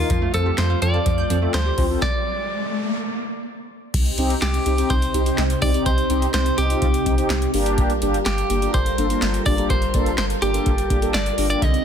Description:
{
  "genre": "synth-pop",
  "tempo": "125 BPM",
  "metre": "4/4",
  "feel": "straight",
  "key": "unclear",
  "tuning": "A4 = 441 Hz",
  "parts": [
    { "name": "clean electric guitar", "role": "melody", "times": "0.0-11.8 s", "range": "F4 to Eb5", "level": "-25 LUFS", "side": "equal", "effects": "tape echo" },
    { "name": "mellow synth brass", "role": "accompaniment", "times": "0.0-11.6 s", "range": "Bb3 to C5", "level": "-25 LUFS", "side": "left 1 dB", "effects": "chorus" },
    { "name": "ensemble organ-string", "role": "sustained chords", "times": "0.0-11.8 s", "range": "C3 to Bb4", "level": "-27 LUFS", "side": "right 1 dB", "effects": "phaser, ensemble chorus" },
    { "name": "round analog bass", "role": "bass", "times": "0.0-11.8 s", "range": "G1 to F2", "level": "-24 LUFS", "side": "equal", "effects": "none" },
    { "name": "analog pluck", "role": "arpeggios", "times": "0.1-1.9, 11.6-11.7 s", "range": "D3 to G6", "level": "-30 LUFS", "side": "right 4 dB", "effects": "chorus, tape echo" },
    { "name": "electro analog drum machine", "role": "drums", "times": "0.1-11.8 s", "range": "crash cymbal, handclaps, hi-hat, kick drum, snare drum", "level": "-23 LUFS", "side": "equal", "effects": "none" },
    { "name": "riser", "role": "sound effects", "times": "1.7-3.0 s", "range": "none", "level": "-29 LUFS", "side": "left 1 dB", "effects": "none" }
  ],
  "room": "light reverb",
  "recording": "dense, heavily limited modern master",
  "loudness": "-18 LUFS",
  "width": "side -8 dB against mid",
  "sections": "0.0-3.9 A section; 3.9-11.8 B section",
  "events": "riser 1.7-3.9; stop 2.0-3.9",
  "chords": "0.1 Fadd9; 2.0 N.C.; 3.9 Cm; 7.5 Gm7"
}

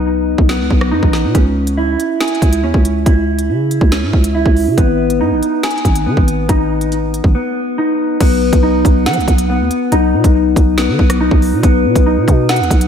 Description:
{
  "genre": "hip hop, drill",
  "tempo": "140 BPM",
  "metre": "4/4",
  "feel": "half-time",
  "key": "unclear",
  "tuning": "A4 = 440 Hz",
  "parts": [
    { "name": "mellow electric guitar", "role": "arpeggios", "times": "0.0-12.9 s", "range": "B3 to G#5", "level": "-15 LUFS", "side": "left 1 dB", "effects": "wide subtle chorus, low-pass filter, analog delay" },
    { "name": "growling 808-style bass", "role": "bass", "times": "0.0-12.9 s", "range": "G#1 to F#3", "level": "-16 LUFS", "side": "right 1 dB", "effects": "none" },
    { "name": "drill drum kit", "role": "drums", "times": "0.4-12.9 s", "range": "crash cymbal, hi-hat, kick drum, rim click, snare drum", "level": "-14 LUFS", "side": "equal", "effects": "none" }
  ],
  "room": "moderate lush hall reverb, RT60 2.0 s",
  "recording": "dreamy mix soaked in reverb",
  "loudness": "-11 LUFS",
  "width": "side -8 dB against mid",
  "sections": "0.0-8.2 A section; 8.2-12.9 B section",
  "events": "break 0.0-1.3",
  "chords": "0.0 B; 1.3 C#m; 4.8 G#m; 8.2 B"
}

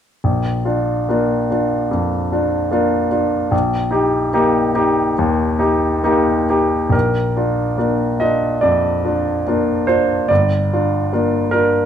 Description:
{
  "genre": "classical, romantic character piece for solo piano",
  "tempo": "72 BPM",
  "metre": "4/4",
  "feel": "rubato",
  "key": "Bb major",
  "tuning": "A4 = 445 Hz",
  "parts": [
    { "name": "clear baby grand piano", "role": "solo", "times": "0.2-11.9 s", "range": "G1 to Eb5", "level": "-15 LUFS", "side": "equal", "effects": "none" }
  ],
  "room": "moderate large studio reverb, RT60 0.8 s",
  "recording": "none",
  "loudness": "-15 LUFS",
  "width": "side -9 dB against mid",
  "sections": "0.2-6.9 A section; 6.9-11.9 B section",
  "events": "none",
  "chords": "0.2 Bb; 3.5 Eb/Bb; 6.9 Bb; 10.3 Gm7"
}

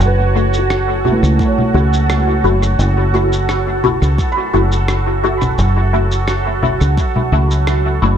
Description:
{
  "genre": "ambient dub",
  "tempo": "86 BPM",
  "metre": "4/4",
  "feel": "straight",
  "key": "F# minor",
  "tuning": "A4 = 444 Hz",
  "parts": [
    { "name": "deep dark ambient pad", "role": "sustained chords", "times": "0.0-8.2 s", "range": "F#4 to A5", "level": "-21 LUFS", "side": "right 5 dB", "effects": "chorus, built-in reverb" },
    { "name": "fingered electric bass", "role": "bass", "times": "0.0-8.2 s", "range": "F#1 to C#2", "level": "-15 LUFS", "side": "equal", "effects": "none" },
    { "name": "electronic shaker, rim click and congas", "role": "drums", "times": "0.0-7.8 s", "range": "none", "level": "-23 LUFS", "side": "left 2 dB", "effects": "studio reverb, dub echo" },
    { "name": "bubbling stepped-filter texture", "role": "texture", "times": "0.0-8.2 s", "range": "F#4 to A4", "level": "-26 LUFS", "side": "right 2 dB", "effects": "chorus, built-in reverb" },
    { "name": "felt-muted upright piano", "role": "arpeggios", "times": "0.1-8.2 s", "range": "A3 to B5", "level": "-22 LUFS", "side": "right 2 dB", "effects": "dub echo" },
    { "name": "filtered dub chord stab", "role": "stabs", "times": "0.4-8.2 s", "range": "A3 to F#4", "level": "-20 LUFS", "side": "left 3 dB", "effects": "phaser, ensemble chorus, dub echo" },
    { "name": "electronic kick drum", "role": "drums", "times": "1.4-7.1 s", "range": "none", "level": "-18 LUFS", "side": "equal", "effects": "studio reverb" }
  ],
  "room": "light reverb, digital ambience",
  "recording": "none",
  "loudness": "-12 LUFS",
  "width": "side -9 dB against mid",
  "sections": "0.0-8.2 A section",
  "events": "none",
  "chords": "0.0 F#m7"
}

